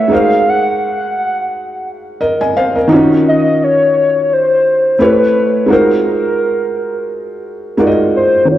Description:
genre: hip hop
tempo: 86 BPM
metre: 4/4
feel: swing 56% on 16ths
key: unclear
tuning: A4 = 442 Hz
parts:
  - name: warbly nostalgic lead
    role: melody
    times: 0.0-8.6 s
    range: Bb4 to Gb5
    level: -13 LUFS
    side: left 1 dB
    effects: chorus, tremolo, low-pass filter
  - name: felt-muted upright piano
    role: accompaniment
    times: 0.0-8.6 s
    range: Eb3 to Ab5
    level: -13 LUFS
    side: equal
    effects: low-pass filter
room: wet concert hall reverb, RT60 2.1 s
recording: dark, warm production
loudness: -10 LUFS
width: side -13 dB against mid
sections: 0.0-8.5 A section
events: none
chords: 0.1 Ab9; 2.9 Ebm9; 5.0 A9; 5.7 Ab13

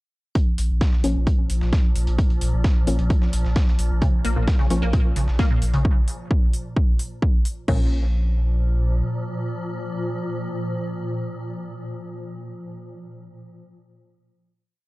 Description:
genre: driving peak-time techno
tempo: 131 BPM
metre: 4/4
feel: straight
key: Bb minor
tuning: A4 = 439 Hz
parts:
  - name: swarming drone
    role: drone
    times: 1.0-12.2 s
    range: Bb2 to F3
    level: -30 LUFS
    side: equal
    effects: built-in reverb, sidechain pumping
  - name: dusty soul sampler-style drum kit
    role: drums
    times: 0.4-5.8 s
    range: hi-hat, snare drum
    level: -38 LUFS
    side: equal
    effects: high-pass filter on hats, high-pass filter on snare
  - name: electronic kick drum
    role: drums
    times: 0.4-7.8 s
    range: none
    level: -19 LUFS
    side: equal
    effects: overdrive
  - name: saturated sub bass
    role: bass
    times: 0.5-9.0 s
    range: Bb1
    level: -22 LUFS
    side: equal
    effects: overdrive, sidechain pumping, low-pass filter
  - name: techno drum kit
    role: drums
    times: 0.6-7.8 s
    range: crash cymbal, hi-hat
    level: -36 LUFS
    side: equal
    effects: overdrive, sidechain pumping on hats, sidechain pumping on cymbals
  - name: filtered dub chord stab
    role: stabs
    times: 1.0-4.8, 7.7-12.3 s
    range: F3 to Db4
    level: -27 LUFS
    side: left 2 dB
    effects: chorus, sidechain pumping, tape echo
  - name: resonant blip pluck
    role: riff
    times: 4.0-7.9 s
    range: Bb2 to Bb3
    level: -27 LUFS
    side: equal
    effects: phaser, ensemble chorus, sidechain pumping, tape echo
room: digital ambience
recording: dry, gritty hardware recording, cassette tape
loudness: -19 LUFS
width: side -20 dB against mid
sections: 0.4-7.7 groove; 7.7-11.3 final chord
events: none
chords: 0.4 Bb5; 7.7 Bbm

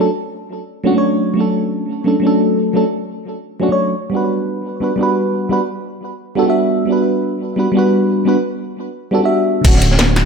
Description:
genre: liquid drum and bass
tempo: 174 BPM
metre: 4/4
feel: straight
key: D major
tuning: A4 = 440 Hz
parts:
  - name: mellow FM electric piano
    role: accompaniment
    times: 0.0-10.3 s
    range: D3 to E5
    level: -15 LUFS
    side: right 1 dB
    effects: chorus, phaser, digital delay
  - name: long sustained 808-style bass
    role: bass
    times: 9.6-10.3 s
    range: D1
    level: -15 LUFS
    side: equal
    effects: none
  - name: crunchy breakbeat drum kit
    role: drums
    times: 9.6-10.3 s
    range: hi-hat, snare drum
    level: -21 LUFS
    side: equal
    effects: high-pass filter on hats, high-pass filter on snare, high-pass filter on room
  - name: drum and bass drum kit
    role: drums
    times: 9.6-10.2 s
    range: crash cymbal, hi-hat, snare drum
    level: -16 LUFS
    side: left 1 dB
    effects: none
  - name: electronic kick drum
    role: drums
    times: 9.6-9.7 s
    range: none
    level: -10 LUFS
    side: equal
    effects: none
room: moderate plate reverb, RT60 1.8 s, digital ambience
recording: none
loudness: -14 LUFS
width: side -5 dB against mid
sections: 0.0-9.6 A section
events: none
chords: 0.0 Dmaj7; 4.0 Gmaj7; 9.6 Dmaj7

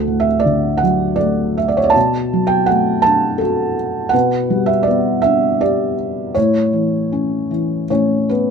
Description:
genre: classical, lyrical solo piano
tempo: 81 BPM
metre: 3/4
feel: rubato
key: D major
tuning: A4 = 442 Hz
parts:
  - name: felt-muted upright piano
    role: solo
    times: 0.0-8.5 s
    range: D2 to A5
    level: -14 LUFS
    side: right 1 dB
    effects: none
room: light reverb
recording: dark, warm production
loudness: -14 LUFS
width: side -6 dB against mid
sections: 0.0-8.5 A section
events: none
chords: 0.0 D; 2.0 Bm7; 4.1 G/B; 6.3 A

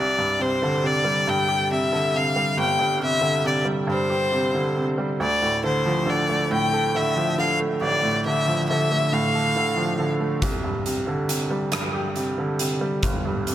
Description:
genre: six-eight pop ballad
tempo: 46 BPM (dotted quarters)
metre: 6/8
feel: straight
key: C major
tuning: A4 = 439 Hz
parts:
  - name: bright violin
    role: melody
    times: 0.0-10.1 s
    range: C5 to G5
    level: -23 LUFS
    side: left 2 dB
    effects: none
  - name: bright upright piano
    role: accompaniment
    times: 0.0-13.5 s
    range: G1 to A4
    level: -23 LUFS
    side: right 1 dB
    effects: none
  - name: huge arena drum kit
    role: drums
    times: 10.4-13.5 s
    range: hi-hat, kick drum, rim click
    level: -27 LUFS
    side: equal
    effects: none
room: light reverb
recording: none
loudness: -20 LUFS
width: side -12 dB against mid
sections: 0.0-13.5 A section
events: none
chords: 0.0 Csus2; 5.2 Dm; 10.4 Csus2

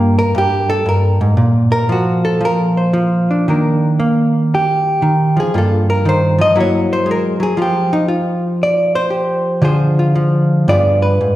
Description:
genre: solo jazz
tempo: 116 BPM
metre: 4/4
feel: swing 67% on 8ths, rubato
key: Eb major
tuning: A4 = 440 Hz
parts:
  - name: hollow-body jazz guitar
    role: solo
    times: 0.0-11.4 s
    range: G2 to Eb5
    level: -12 LUFS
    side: equal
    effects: none
room: wet recital hall reverb, RT60 1.8 s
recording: recorded in a church or concert hall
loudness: -12 LUFS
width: side -14 dB against mid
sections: 0.0-3.5 A section; 3.5-11.4 A section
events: hollow-body jazz guitar solo 0.0-3.5, 3.5-11.4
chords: 0.0 Gm7; 1.4 Bbadd9; 3.5 Ebmaj7; 5.5 Gm11; 6.6 Gb7; 7.6 Fsus2; 9.6 Dm7b5; 10.7 G7b9

